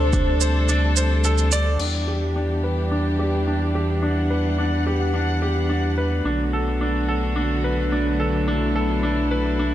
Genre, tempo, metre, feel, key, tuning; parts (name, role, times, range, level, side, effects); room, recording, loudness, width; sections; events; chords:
piano and strings electronica; 108 BPM; 4/4; straight; E minor; A4 = 439 Hz
warm velvety synth lead; melody; 0.0-1.3 s; C5; -29 LUFS; equal; chorus, ping-pong delay
warm chamber string section; sustained chords; 0.0-9.7 s; C3 to F#5; -26 LUFS; left 1 dB
bright concert grand piano; riff; 0.0-9.7 s; D4 to D5; -24 LUFS; equal; low-pass filter, ping-pong delay
warm sub bass; bass; 0.0-9.7 s; B1 to E2; -22 LUFS; equal; sidechain pumping
electronic shaker and crash cymbal; drums; 0.1-1.9 s; -27 LUFS; right 6 dB
light reverb, digital ambience; -19 LUFS; side -12 dB against mid
0.0-1.8 A section; 1.8-9.7 B section
filter sweep on grand piano 1.8-9.7
0.0 D7sus4; 1.8 Em7; 6.2 Bm7